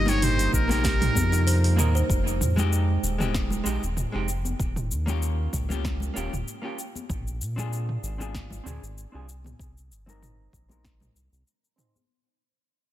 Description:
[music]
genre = sunset chillout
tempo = 96 BPM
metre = 4/4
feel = swing 54% on 16ths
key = F minor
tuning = A4 = 440 Hz
[part]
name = trumpet with metal mute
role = melody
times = 0.0-1.7 s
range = Bb4 to Eb5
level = -29 LUFS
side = right 1 dB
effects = digital delay
[part]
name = airy breathy pad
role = sustained chords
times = 0.0-2.1 s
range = C3 to Eb4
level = -33 LUFS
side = equal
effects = chorus
[part]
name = round analog bass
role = bass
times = 0.0-11.4 s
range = Eb1 to Bb2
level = -26 LUFS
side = equal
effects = none
[part]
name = vintage hollow-body jazz guitar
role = accompaniment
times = 0.1-12.0 s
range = Ab3 to C5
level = -33 LUFS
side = moving between left 5 dB and right 4 dB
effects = auto-pan, low-pass filter, digital delay
[part]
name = kalimba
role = arpeggios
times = 0.1-2.1 s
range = Eb4 to C5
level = -33 LUFS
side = right 3 dB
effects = digital delay
[part]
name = deep house drum kit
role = drums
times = 0.1-12.1 s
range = cabasa, hi-hat, snare drum, toms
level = -32 LUFS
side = right 1 dB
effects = overdrive
[part]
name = congas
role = percussion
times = 0.1-12.1 s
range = none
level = -34 LUFS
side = left 2 dB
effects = none
[part]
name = electronic kick drum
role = drums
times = 0.5-11.0 s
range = none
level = -29 LUFS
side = equal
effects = overdrive
[sound]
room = light reverb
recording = dense, heavily limited modern master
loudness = -23 LUFS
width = side -13 dB against mid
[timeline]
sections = 0.0-2.1 A section; 2.1-12.1 B section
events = fade-out 2.1-12.1; filter sweep on hollow-body jazz guitar 2.1-12.1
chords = 0.0 Cm7; 2.1 Fm7; 4.6 Eb7; 7.1 Bb7; 9.3 Cm7

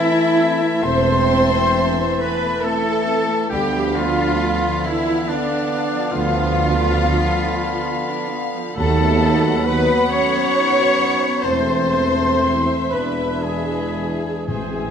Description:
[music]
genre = classical, slow romantic movement for symphony orchestra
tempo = 36-48 BPM (dotted quarters)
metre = 12/8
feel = rubato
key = A minor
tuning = A4 = 443 Hz
[part]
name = warm symphonic violin section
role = melody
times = 0.0-14.9 s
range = E5 to F#5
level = -30 LUFS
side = left 6 dB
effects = none
[part]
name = dark clarinet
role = second line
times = 0.0-14.9 s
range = A5 to C6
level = -31 LUFS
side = left 4 dB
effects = none
[part]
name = silver concert flute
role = second line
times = 0.0-14.9 s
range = D5 to C#6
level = -27 LUFS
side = left 4 dB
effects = none
[part]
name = warm oboe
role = second line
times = 0.0-14.9 s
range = D4 to C#5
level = -31 LUFS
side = right 1 dB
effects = none
[part]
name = warm symphonic violin section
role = second line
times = 0.0-14.9 s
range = D5 to C#6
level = -31 LUFS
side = left 3 dB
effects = none
[part]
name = dark bassoon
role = accompaniment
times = 0.0-14.9 s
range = D3 to F#3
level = -29 LUFS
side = right 2 dB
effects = none
[part]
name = warm studio viola section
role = accompaniment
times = 0.0-14.9 s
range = D3 to E5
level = -30 LUFS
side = right 2 dB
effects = none
[part]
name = clear trombone section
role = sustained chords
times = 0.0-14.9 s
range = D3 to D4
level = -28 LUFS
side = right 3 dB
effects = none
[part]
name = mellow French horn section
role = sustained chords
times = 0.0-14.9 s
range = D3 to C#4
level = -26 LUFS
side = left 5 dB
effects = none
[part]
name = dark trumpet section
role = stabs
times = 0.0-14.9 s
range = D4 to C#5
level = -25 LUFS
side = equal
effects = none
[part]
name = rich symphonic cello section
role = bass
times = 0.0-14.9 s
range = D4 to C#5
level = -22 LUFS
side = right 1 dB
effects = none
[part]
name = mellow tuba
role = bass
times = 0.8-14.9 s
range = E1 to D#2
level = -25 LUFS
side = right 4 dB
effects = none
[part]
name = warm symphonic double bass section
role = bass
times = 0.8-14.9 s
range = E1 to E2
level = -25 LUFS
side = right 2 dB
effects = none
[part]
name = timpani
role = percussion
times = 14.5-14.9 s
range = A2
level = -28 LUFS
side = left 3 dB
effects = none
[sound]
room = moderate concert hall reverb, RT60 2.0 s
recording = none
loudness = -16 LUFS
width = side -8 dB against mid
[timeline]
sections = 0.0-14.9 A section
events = none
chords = 0.0 Am; 3.5 Bdim/D; 8.8 B7/D#; 11.4 Am/E; 12.9 E7

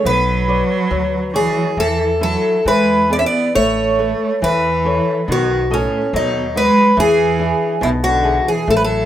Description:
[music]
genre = fado-style ballad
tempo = 70 BPM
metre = 2/4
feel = rubato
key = unclear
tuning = A4 = 443 Hz
[part]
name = picked twelve-string acoustic guitar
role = melody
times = 0.0-9.1 s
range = C#4 to E5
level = -16 LUFS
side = equal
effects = none
[part]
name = clear cello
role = second line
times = 0.0-9.1 s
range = A2 to C#4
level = -21 LUFS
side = right 3 dB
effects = none
[part]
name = flamenco guitar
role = accompaniment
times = 0.0-9.1 s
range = B2 to D#5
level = -22 LUFS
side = left 3 dB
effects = none
[part]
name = upright bass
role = bass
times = 0.1-9.1 s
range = A1 to E2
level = -24 LUFS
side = equal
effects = none
[sound]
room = wet small room reverb, RT60 0.5 s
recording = rough home demo mix, faint mains hum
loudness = -14 LUFS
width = side -11 dB against mid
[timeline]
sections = 0.0-9.1 A section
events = none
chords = 0.1 Bmadd9; 1.8 Esus4; 2.7 E; 3.6 Aadd9; 5.3 B7; 7.0 E7

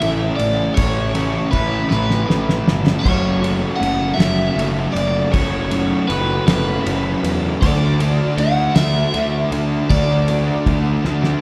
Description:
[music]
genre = indie rock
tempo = 53 BPM (dotted quarters)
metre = 6/8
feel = straight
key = unclear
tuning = A4 = 440 Hz
[part]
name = overdriven semi-hollow guitar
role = melody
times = 0.0-11.4 s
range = B4 to F#5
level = -25 LUFS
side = equal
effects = phaser
[part]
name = tonewheel organ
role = sustained chords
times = 0.0-11.4 s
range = C#3 to A4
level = -32 LUFS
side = equal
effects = none
[part]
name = fuzz guitar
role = riff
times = 0.0-11.4 s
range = A2 to F#4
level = -23 LUFS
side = equal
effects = distortion
[part]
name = fuzz picked electric bass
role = bass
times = 0.0-11.3 s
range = F#1 to E2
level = -24 LUFS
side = equal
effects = overdrive
[part]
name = cloth-damped thuddy drum kit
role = drums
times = 0.0-11.4 s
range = crash cymbal, kick drum, ride cymbal, snare drum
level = -24 LUFS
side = equal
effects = none
[sound]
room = wet recital hall reverb, RT60 1.7 s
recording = recorded in a church or concert hall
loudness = -18 LUFS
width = mono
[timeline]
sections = 0.0-11.4 A section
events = drum fill 1.9-3.1, 11.0-11.4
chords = 0.0 A; 3.1 F#m; 7.6 D

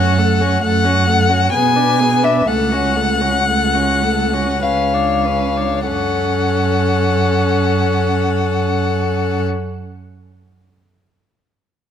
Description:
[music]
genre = classical, slow romantic movement for string quartet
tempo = 47-68 BPM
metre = 3/4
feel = rubato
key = F# minor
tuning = A4 = 440 Hz
[part]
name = clear violin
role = melody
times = 0.0-9.4 s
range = F#4 to C#5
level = -22 LUFS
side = left 11 dB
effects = none
[part]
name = warm violin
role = second line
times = 0.0-9.4 s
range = E5 to G#5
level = -18 LUFS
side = left 4 dB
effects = none
[part]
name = warm viola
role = accompaniment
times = 0.0-9.5 s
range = A3 to D4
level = -21 LUFS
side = right 2 dB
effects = none
[part]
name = warm cello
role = bass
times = 0.0-9.5 s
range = C#2 to B2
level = -18 LUFS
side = right 4 dB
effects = none
[sound]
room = moderate recital hall reverb, RT60 1.6 s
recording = none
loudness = -14 LUFS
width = side -8 dB against mid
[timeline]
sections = 0.0-5.9 A section; 5.9-9.6 B section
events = slowing down 0.0-5.9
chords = 0.0 F#m; 1.5 G#dim/B; 2.5 F#m/C#; 4.6 C#7b9; 5.9 F#m

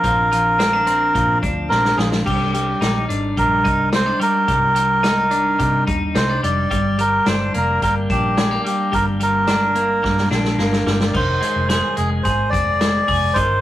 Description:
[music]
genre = jangly indie pop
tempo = 108 BPM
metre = 4/4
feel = straight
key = unclear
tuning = A4 = 440 Hz
[part]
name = melodica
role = melody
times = 0.0-13.6 s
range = G4 to D5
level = -18 LUFS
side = equal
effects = none
[part]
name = twelve-string electric guitar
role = arpeggios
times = 0.0-13.6 s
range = Eb3 to Ab4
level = -22 LUFS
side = left 1 dB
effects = none
[part]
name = vintage muted fingered electric bass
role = bass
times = 0.0-13.6 s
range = F1 to C3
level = -24 LUFS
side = equal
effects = none
[part]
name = vintage drum kit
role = drums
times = 0.0-13.5 s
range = crash cymbal, hi-hat, kick drum, snare drum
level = -23 LUFS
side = equal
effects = none
[sound]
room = moderate studio ambience, RT60 0.5 s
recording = rough rehearsal-room recording, vinyl crackle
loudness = -15 LUFS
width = side -13 dB against mid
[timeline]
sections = 0.0-11.2 A section; 11.2-13.6 B section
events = drum fill 1.7-2.3, 10.0-11.2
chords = 0.0 Bbadd9; 2.3 Cmadd9; 6.7 Gm; 11.2 Fm7

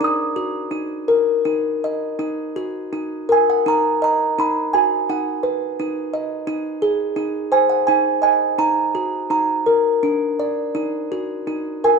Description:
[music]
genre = children's music, lullaby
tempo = 84 BPM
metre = 3/4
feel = rubato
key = Eb minor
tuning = A4 = 440 Hz
[part]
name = music box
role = solo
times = 0.0-12.0 s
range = D4 to Eb6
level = -17 LUFS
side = right 1 dB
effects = none
[sound]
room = moderate stone room reverb, RT60 1.4 s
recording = band playing live in one room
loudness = -18 LUFS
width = side -4 dB against mid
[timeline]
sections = 0.0-2.2 A section; 2.2-12.0 B section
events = none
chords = 0.0 Ebm; 4.4 B/D#; 6.5 Ab; 8.6 Ebm; 10.0 N.C.; 10.8 Ebm

